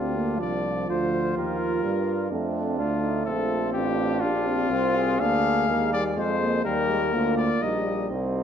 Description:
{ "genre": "classical, brass quintet", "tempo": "124 BPM", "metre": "3/4", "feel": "rubato", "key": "Eb major from 5.2 s", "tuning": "A4 = 439 Hz", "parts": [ { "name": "warm trumpet", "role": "melody", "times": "0.0-8.1 s", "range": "F4 to F5", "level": "-28 LUFS", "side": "left 6 dB", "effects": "none" }, { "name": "mellow flugelhorn", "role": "second line", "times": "0.0-8.4 s", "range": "C4 to Ab4", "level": "-32 LUFS", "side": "right 7 dB", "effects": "none" }, { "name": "clear trombone", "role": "accompaniment", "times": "0.0-8.4 s", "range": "G3 to F4", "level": "-30 LUFS", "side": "right 4 dB", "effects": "none" }, { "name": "mellow French horn", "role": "accompaniment", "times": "0.0-8.3 s", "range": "F3 to D4", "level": "-29 LUFS", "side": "left 2 dB", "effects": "none" }, { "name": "clear bass trombone", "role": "bass", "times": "0.0-8.4 s", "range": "A1 to G2", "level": "-29 LUFS", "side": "right 1 dB", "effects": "none" } ], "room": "moderate scoring stage reverb, RT60 1.6 s", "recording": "dark, warm production", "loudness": "-22 LUFS", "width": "side -8 dB against mid", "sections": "0.0-8.4 A section", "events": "none", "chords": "0.0 Bb; 0.9 Bb/D; 2.3 F; 3.7 F/A; 5.2 Bb/D; 6.7 Eb" }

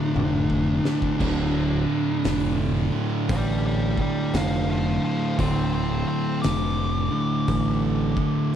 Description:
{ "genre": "stoner and doom metal", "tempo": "57 BPM", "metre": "4/4", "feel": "swing 65% on 8ths", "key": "D minor", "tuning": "A4 = 440 Hz", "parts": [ { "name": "fuzz lead guitar", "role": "melody", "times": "0.0-8.5 s", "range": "D4 to D6", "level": "-29 LUFS", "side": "equal", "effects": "distortion, tape echo" }, { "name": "distorted electric guitar", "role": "riff", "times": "0.0-8.6 s", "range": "D2 to D3", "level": "-31 LUFS", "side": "left 1 dB", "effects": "distortion" }, { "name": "thick fuzz guitar", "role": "riff", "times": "0.0-8.6 s", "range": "D2 to D3", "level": "-29 LUFS", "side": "left 9 dB", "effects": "distortion" }, { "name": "thick fuzz guitar", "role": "riff", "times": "0.0-8.6 s", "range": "D2 to D3", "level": "-26 LUFS", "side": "right 7 dB", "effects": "distortion" }, { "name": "growling fingered electric bass", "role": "bass", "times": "0.2-8.1 s", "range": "D1 to A1", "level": "-26 LUFS", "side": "equal", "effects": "overdrive" }, { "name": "oversized low-tuned drum kit", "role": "drums", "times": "0.2-8.3 s", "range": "crash cymbal, hi-hat, kick drum, snare drum, toms", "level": "-31 LUFS", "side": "equal", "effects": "none" } ], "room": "little or no reverb", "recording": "none", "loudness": "-21 LUFS", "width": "side -9 dB against mid", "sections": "0.0-8.6 A section", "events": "lead electric guitar solo 0.0-8.6; drum fill 0.2-1.2", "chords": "0.0 Dm" }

